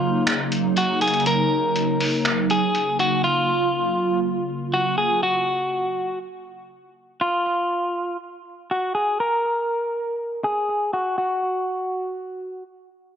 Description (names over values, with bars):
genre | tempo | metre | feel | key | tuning
hip hop, atmospheric cloud-rap | 121 BPM | 4/4 | half-time | unclear | A4 = 441 Hz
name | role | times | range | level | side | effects
clean electric guitar | melody | 0.0-12.6 s | F4 to Bb4 | -22 LUFS | equal | tape echo
hollow soft pad | sustained chords | 0.0-5.2 s | Db3 to F4 | -23 LUFS | right 2 dB | ensemble chorus
trip hop sampler-style drum kit | drums | 0.3-3.1 s | finger snaps, hi-hat | -25 LUFS | equal | none
room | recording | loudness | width
light reverb | dry, gritty hardware recording, low-pass filter | -20 LUFS | side -8 dB against mid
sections
0.0-11.2 A section; 11.2-13.2 B section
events
break 0.0-3.2; filter sweep 0.0-11.2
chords
0.0 Ebm7; 3.2 Gbmaj7; 7.2 N.C.